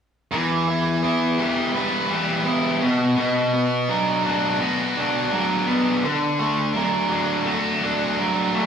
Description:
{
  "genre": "rock",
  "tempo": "84 BPM",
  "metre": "4/4",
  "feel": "straight",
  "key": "E minor",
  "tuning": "A4 = 442 Hz",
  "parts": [
    { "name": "biting overdriven guitar", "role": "riff", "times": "0.3-8.7 s", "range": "E2 to E4", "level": "-24 LUFS", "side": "left 4 dB", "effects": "none" },
    { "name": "tight distorted guitar", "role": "riff", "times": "0.3-8.7 s", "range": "B2 to B4", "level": "-21 LUFS", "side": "right 2 dB", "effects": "distortion" }
  ],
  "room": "wet stone room reverb, RT60 1.3 s",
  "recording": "band playing live in one room",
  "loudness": "-19 LUFS",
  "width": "side -7 dB against mid",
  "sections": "0.3-8.7 A section",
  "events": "none",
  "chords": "0.3 Em; 2.8 Bm; 6.0 D",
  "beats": "| 0.30 1.02 1.74 2.45 | 3.17 3.88 4.60 5.31 | 6.03 6.74 7.46 8.17"
}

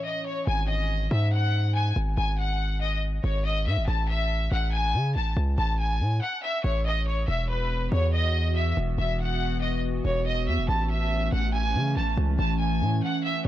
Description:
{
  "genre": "hip hop, drill",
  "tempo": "141 BPM",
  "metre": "4/4",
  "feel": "half-time",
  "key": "G# phrygian",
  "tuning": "A4 = 440 Hz",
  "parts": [
    { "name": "clear chamber violin section", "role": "melody", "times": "0.0-13.5 s", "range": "B4 to A5", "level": "-29 LUFS", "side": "left 1 dB", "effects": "low-pass filter, analog delay" },
    { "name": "warbly tape-like pad", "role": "sustained chords", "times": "0.0-0.4, 7.5-13.5 s", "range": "A2 to F#4", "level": "-32 LUFS", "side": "equal", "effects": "chorus, built-in reverb" },
    { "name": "distorted 808-style bass", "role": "bass", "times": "0.5-13.5 s", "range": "E1 to C#3", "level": "-25 LUFS", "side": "equal", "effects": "distortion" }
  ],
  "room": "studio reverb",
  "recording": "dry, gritty hardware recording, transformer saturation, cassette tape",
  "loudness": "-23 LUFS",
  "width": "side -13 dB against mid",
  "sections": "0.5-13.5 A section",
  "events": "none",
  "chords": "0.5 G#5; 3.9 A; 7.3 Esus2; 10.7 A",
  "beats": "0.05 | 0.47 0.90 1.32 1.75 | 2.17 2.60 3.02 3.45 | 3.88 4.30 4.73 5.15 | 5.58 6.00 6.43 6.86 | 7.28 7.71 8.13 8.56 | 8.98 9.41 9.83 10.26 | 10.68 11.11 11.54 11.96 | 12.39 12.81 13.24"
}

